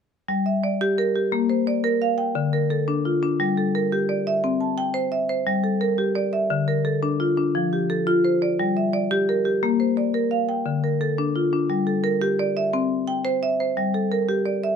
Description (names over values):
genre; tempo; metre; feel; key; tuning
southern african traditional; 116 BPM (dotted quarters); 12/8; straight; G dorian; A4 = 440 Hz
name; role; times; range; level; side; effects
marimba with medium hard mallets; arpeggios; 0.3-14.8 s; D3 to A5; -20 LUFS; left 1 dB; none
room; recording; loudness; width
moderate studio reverb, RT60 0.7 s; none; -20 LUFS; side -7 dB against mid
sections
0.3-14.8 A section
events
none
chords
0.3 Gm; 1.3 Bb; 2.4 Dm; 3.4 Gm; 4.4 C; 5.5 Gm; 6.5 Dm; 7.5 F; 8.6 Gm; 9.6 Bb; 10.7 Dm; 11.7 Gm; 12.7 C; 13.8 Gm